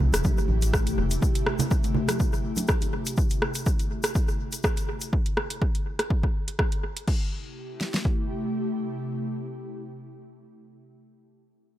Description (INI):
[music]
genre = afro house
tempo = 123 BPM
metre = 4/4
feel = swing 54% on 16ths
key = A minor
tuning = A4 = 437 Hz
[part]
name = ethereal airy pad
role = sustained chords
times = 0.0-10.6 s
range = C3 to G4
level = -32 LUFS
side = left 1 dB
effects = ensemble chorus, built-in reverb, sidechain pumping
[part]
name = round analog bass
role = bass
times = 0.0-1.2 s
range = E1 to C2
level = -24 LUFS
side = equal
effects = sidechain pumping
[part]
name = congas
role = percussion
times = 0.0-3.0 s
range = none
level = -31 LUFS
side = right 4 dB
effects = analog delay
[part]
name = sub drop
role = sound effects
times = 0.0-1.2 s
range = none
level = barely audible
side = none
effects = none
[part]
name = afro-pop drum kit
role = drums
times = 0.1-7.2 s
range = crash cymbal, hi-hat, rim click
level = -30 LUFS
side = equal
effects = overdrive, analog delay
[part]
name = tube shaker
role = percussion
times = 0.1-5.1 s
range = none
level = -38 LUFS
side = left 4 dB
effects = analog delay
[part]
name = deep house drum kit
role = drums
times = 0.2-8.2 s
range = kick drum, snare drum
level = -25 LUFS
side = equal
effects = overdrive
[sound]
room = little or no reverb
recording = echo-heavy mix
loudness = -24 LUFS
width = side -13 dB against mid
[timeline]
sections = 0.0-7.1 A section; 7.1-11.0 B section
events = impact 0.0-1.2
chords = 0.0 Am7